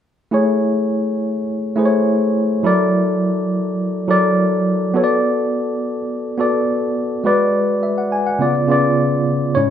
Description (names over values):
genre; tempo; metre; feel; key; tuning
soul; 104 BPM; 4/4; straight; A major; A4 = 438 Hz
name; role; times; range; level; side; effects
tine electric piano; solo; 0.3-9.7 s; A2 to G#5; -15 LUFS; equal; medium stereo tremolo
room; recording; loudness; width
wet large studio reverb, RT60 0.9 s; band playing live in one room; -15 LUFS; side -9 dB against mid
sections
0.3-9.6 A section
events
none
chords
0.3 Amaj7; 2.6 F#7alt; 4.9 Bm7; 7.3 G#m7b5; 8.4 C#7b9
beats
| 0.33 0.91 1.48 2.06 | 2.64 3.21 3.79 4.37 | 4.95 5.52 6.10 6.68 | 7.25 7.83 8.41 8.98 | 9.56